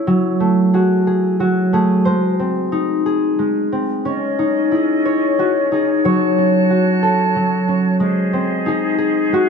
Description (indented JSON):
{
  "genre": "children's music",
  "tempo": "91 BPM",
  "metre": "3/4",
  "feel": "rubato",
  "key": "unclear",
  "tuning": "A4 = 439 Hz",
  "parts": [
    { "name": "concert harp", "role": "melody", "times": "0.0-9.5 s", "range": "F#3 to C#5", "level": "-14 LUFS", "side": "equal", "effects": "none" },
    { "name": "bright small flute group", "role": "sustained chords", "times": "4.1-9.5 s", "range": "C#4 to A5", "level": "-24 LUFS", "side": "right 4 dB", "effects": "none" }
  ],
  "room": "light reverb",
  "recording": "close, detailed microphones",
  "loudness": "-14 LUFS",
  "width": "side -6 dB against mid",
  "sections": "0.0-9.5 A section",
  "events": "none",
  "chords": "0.1 F#madd9; 2.1 G#; 4.1 C#madd9; 6.0 F#m; 8.0 G#",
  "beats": "| 0.08 0.74 1.40 | 2.06 2.72 3.39 | 4.06 4.72 5.39 | 6.05 6.70 7.35 | 8.01 8.66 9.32"
}